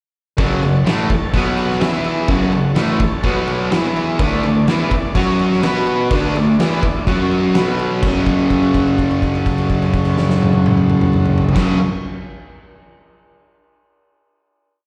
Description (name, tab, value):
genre	garage rock duo or trio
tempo	126 BPM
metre	4/4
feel	straight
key	F# minor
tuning	A4 = 440 Hz
part	overdriven combo organ	sustained chords	0.4-11.7 s	B3 to A5	-30 LUFS	equal	none
part	fuzz guitar	riff	0.4-11.8 s	F#2 to B4	-18 LUFS	equal	distortion, slapback echo
part	oversized low-tuned drum kit	drums	0.4-11.7 s	crash cymbal, kick drum, snare drum, toms	-22 LUFS	equal	none
room	moderate club reverb, RT60 0.8 s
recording	live gig heard through the venue's PA, recital hall reverb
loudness	-16 LUFS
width	mono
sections	0.4-8.0 riff; 8.0-11.8 final chord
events	held note 8.0-11.6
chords	0.4 F#m; 1.3 B5; 1.8 E5; 2.3 F#m; 3.2 B5; 3.7 E5; 4.2 D5; 5.2 F#5; 5.6 B5; 6.1 D5; 7.1 F#5; 7.6 B5; 8.0 F#m